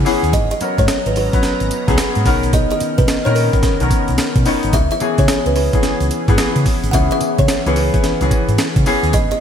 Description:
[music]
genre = R&B, new jack swing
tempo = 109 BPM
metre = 4/4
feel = swing 64% on 16ths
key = C# dorian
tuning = A4 = 440 Hz
[part]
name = clear concert grand piano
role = accompaniment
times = 0.0-9.2 s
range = D#3 to B4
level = -20 LUFS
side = left 3 dB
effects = lush chorus
[part]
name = sweeping resonant pad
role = sustained chords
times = 0.0-9.4 s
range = D#3 to A#5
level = -26 LUFS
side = left 1 dB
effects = chorus
[part]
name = hollow-body short-scale fingered electric bass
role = bass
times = 0.0-9.3 s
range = G#1 to C#3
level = -18 LUFS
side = equal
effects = none
[part]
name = breakbeat sampler-style drum kit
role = drums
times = 0.1-9.4 s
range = hi-hat, kick drum, snare drum, tambourine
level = -18 LUFS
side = right 1 dB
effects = none
[part]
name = tube shaker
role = percussion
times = 0.1-9.4 s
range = none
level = -36 LUFS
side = right 7 dB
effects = none
[part]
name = kalimba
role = melody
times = 0.3-9.4 s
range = A#4 to F#5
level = -21 LUFS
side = equal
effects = none
[sound]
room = light reverb, digital ambience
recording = bright 1980s-style digital production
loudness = -13 LUFS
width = side -8 dB against mid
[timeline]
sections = 0.0-9.4 A section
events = none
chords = 0.3 G#m11; 2.3 Bmaj9; 4.7 C#m7

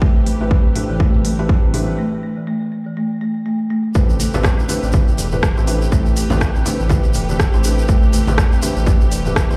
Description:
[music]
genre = afro house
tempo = 122 BPM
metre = 4/4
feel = swing 58% on 16ths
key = A minor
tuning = A4 = 439 Hz
[part]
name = dark studio string section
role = sustained chords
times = 0.0-9.6 s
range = C3 to B4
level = -32 LUFS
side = equal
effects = sidechain pumping
[part]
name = folk marimba with medium mallets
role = arpeggios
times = 0.0-9.6 s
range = E3 to D4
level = -26 LUFS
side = equal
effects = sidechain pumping, low-pass filter, tape echo
[part]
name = felt-muted upright piano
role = stabs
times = 0.0-9.6 s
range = A3 to C5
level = -28 LUFS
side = equal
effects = sidechain pumping, tape echo
[part]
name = smooth gliding synth bass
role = bass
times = 0.0-9.6 s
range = E1 to A1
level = -23 LUFS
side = equal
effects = tube saturation, sidechain pumping
[part]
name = afro-pop drum kit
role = drums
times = 0.0-9.5 s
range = hi-hat, rim click, toms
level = -27 LUFS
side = equal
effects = none
[part]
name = electronic kick drum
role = drums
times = 0.0-9.5 s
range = none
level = -18 LUFS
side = equal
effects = overdrive
[part]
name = tube shaker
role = percussion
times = 3.9-9.6 s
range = none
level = -34 LUFS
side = equal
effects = none
[part]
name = congas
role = percussion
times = 4.2-9.0 s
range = none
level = -27 LUFS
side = equal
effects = none
[sound]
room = light reverb, small room reverb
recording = played on a big sound system in a bare room, large studio reverb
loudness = -17 LUFS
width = mono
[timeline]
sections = 0.0-4.0 A section; 4.0-9.6 B section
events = build-up 0.0-4.0; drum fill 0.0-2.0; filter sweep on marimba 0.0-4.0; filter sweep on felt piano 0.0-4.0; break 2.0-4.0; drop 4.0-9.6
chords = 0.0 Am9

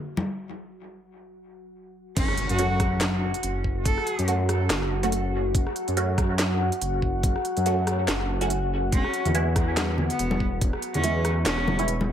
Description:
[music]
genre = deep dubstep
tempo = 142 BPM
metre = 4/4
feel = swing 57% on 16ths, half-time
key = F# minor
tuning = A4 = 440 Hz
[part]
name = deep dark ambient pad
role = sustained chords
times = 0.0-12.1 s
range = F#4 to F#5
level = -32 LUFS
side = left 2 dB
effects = chorus, built-in reverb
[part]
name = congas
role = percussion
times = 0.2, 9.3-12.1 s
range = none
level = -30 LUFS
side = left 1 dB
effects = dub echo
[part]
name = rich cello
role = melody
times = 2.2-4.3, 8.9-11.8 s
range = B3 to A4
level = -31 LUFS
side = equal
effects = dub echo
[part]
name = dark detuned saw bass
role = bass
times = 2.2-12.1 s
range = E1 to F#2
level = -26 LUFS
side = equal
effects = none
[part]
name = electronic kick drum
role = drums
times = 2.2-10.7 s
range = none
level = -25 LUFS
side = equal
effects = none
[part]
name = garage drum kit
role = drums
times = 2.2-12.0 s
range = crash cymbal, handclaps, hi-hat, rim click, snare drum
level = -29 LUFS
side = equal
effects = none
[part]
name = impact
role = sound effects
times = 2.2-3.9 s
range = none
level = -34 LUFS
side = equal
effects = none
[part]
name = filtered dub chord stab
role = stabs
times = 2.6-11.9 s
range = G#3 to F#4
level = -31 LUFS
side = right 3 dB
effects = phaser, ensemble chorus, dub echo
[sound]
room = moderate spring reverb, RT60 1.1 s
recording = echo-heavy mix, faint mains hum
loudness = -22 LUFS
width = side -9 dB against mid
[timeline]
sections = 0.0-2.2 A section; 2.2-12.1 B section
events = break 0.5-2.2; drop 2.2-12.1; impact 2.2-3.9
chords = none

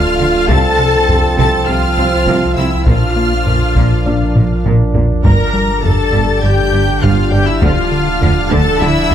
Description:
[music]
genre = cinematic, hybrid orchestral and electronic film score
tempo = 101 BPM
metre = 4/4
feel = straight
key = G dorian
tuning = A4 = 440 Hz
[part]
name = rich symphonic violin section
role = melody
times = 0.0-9.1 s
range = E6 to Bb6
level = -21 LUFS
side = left 1 dB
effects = none
[part]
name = warm symphonic violin section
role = second line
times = 0.0-9.1 s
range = E5 to Bb5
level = -22 LUFS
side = left 4 dB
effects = none
[part]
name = clear symphonic viola section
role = accompaniment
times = 0.0-9.1 s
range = E4 to Bb4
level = -21 LUFS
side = equal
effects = none
[part]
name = bright trombone section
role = sustained chords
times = 0.0-9.1 s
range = D3 to D4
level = -22 LUFS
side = right 4 dB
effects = none
[part]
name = dark French horn section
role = sustained chords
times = 0.0-9.1 s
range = E4 to Bb4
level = -21 LUFS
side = left 1 dB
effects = none
[part]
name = deep rumbling drone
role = sustained chords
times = 0.0-9.1 s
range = F3 to D5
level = -22 LUFS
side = equal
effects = built-in reverb
[part]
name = rubbery square bass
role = riff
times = 0.0-9.1 s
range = C2 to Bb3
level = -19 LUFS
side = left 2 dB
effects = none
[part]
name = sub bass with octave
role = bass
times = 0.0-9.1 s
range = D1 to C2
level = -19 LUFS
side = equal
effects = none
[part]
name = felt-muted upright piano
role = texture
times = 0.0-9.1 s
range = D4 to F5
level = -27 LUFS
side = left 2 dB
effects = none
[part]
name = clear symphonic double bass section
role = bass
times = 0.2-9.1 s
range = G1 to D2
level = -20 LUFS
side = right 4 dB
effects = none
[part]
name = rich symphonic cello section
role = bass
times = 0.2-9.1 s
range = G2 to D3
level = -21 LUFS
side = right 3 dB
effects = none
[part]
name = taiko ensemble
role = drums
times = 0.5-9.1 s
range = none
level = -18 LUFS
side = equal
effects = none
[sound]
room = light reverb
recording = none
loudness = -10 LUFS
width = side -10 dB against mid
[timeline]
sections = 0.0-9.1 A section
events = drum fill 4.4-5.2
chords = 0.5 F/C; 2.9 Bb; 5.2 Gm; 7.6 Dmadd9

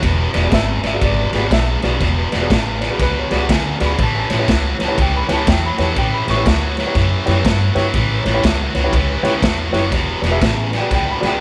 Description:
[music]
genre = electric blues shuffle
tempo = 121 BPM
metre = 4/4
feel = swing 63% on 8ths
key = unclear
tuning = A4 = 438 Hz
[part]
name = overdriven electric guitar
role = riff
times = 0.0-11.4 s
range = E2 to F#3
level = -24 LUFS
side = equal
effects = none
[part]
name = upright bass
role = bass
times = 0.0-11.4 s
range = E1 to G2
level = -22 LUFS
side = equal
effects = none
[part]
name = raw garage drum kit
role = drums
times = 0.0-11.3 s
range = kick drum, ride cymbal, snare drum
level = -22 LUFS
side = equal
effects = none
[part]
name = dark upright piano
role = accompaniment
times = 0.3-11.4 s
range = E4 to C#6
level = -24 LUFS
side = equal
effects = none
[sound]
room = light reverb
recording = none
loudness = -17 LUFS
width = mono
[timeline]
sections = 0.0-11.4 A section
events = none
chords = 0.0 E7; 4.0 A7; 9.9 E7

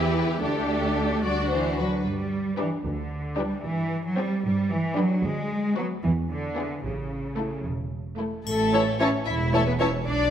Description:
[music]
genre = cinematic, playful, whimsical film cue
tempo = 75 BPM (dotted quarters)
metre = 6/8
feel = straight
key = G major, A major from 5.2 s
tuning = A4 = 440 Hz
[part]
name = rich studio violin section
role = melody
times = 0.0-10.3 s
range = G#4 to E5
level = -30 LUFS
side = left 5 dB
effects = none
[part]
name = dark studio violin section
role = second line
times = 0.0-9.9 s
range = E4 to A5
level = -33 LUFS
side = left 3 dB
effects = none
[part]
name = warm studio viola section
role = accompaniment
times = 0.0-9.9 s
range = A3 to C#5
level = -30 LUFS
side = equal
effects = none
[part]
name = rich studio double bass section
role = bass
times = 0.0-10.3 s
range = E1 to G2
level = -30 LUFS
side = right 2 dB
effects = none
[part]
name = rich symphonic cello section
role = bass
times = 0.0-10.3 s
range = C#3 to E4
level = -27 LUFS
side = right 1 dB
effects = none
[part]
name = triangle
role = percussion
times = 8.5-9.5 s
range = none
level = -40 LUFS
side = left 6 dB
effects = none
[part]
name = dark clarinet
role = second line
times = 8.7-9.9 s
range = C#5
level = -32 LUFS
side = equal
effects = none
[part]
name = mellow bassoon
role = accompaniment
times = 8.7-9.9 s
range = E3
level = -31 LUFS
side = equal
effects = none
[sound]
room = moderate scoring stage reverb, RT60 1.5 s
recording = none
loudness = -23 LUFS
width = side -9 dB against mid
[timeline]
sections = 0.0-8.5 A section; 8.5-10.3 B section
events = none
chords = 0.4 Dsus4; 1.2 D; 2.1 G; 3.6 C/G; 4.4 G; 5.2 Bm/D; 6.0 E; 6.8 A

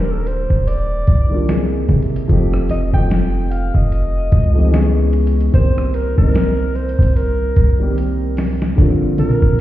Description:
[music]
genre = contemporary R&B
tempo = 74 BPM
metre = 4/4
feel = swing 58% on 16ths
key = unclear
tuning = A4 = 440 Hz
[part]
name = warm alto saxophone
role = melody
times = 0.0-9.6 s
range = A4 to G5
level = -25 LUFS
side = equal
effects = ping-pong delay
[part]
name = dark concert grand piano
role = accompaniment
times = 0.0-9.6 s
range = D3 to G#4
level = -20 LUFS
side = left 1 dB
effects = none
[part]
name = long sustained 808-style bass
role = bass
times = 0.0-9.6 s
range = Eb1 to C3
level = -17 LUFS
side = equal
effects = none
[part]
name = dusty soul sampler-style drum kit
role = drums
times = 0.3-9.6 s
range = hi-hat, kick drum, rim click, snare drum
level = -16 LUFS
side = equal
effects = none
[sound]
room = small room ambience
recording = heard muffled through a wall, stone room reverb, EQ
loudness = -13 LUFS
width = side -14 dB against mid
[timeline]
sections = 0.0-8.8 A section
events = drum fill 8.0-8.8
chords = 0.0 Ebmaj7; 1.5 C7alt; 2.3 F9; 4.7 Dbm7; 5.5 Cm7; 8.8 Bb69

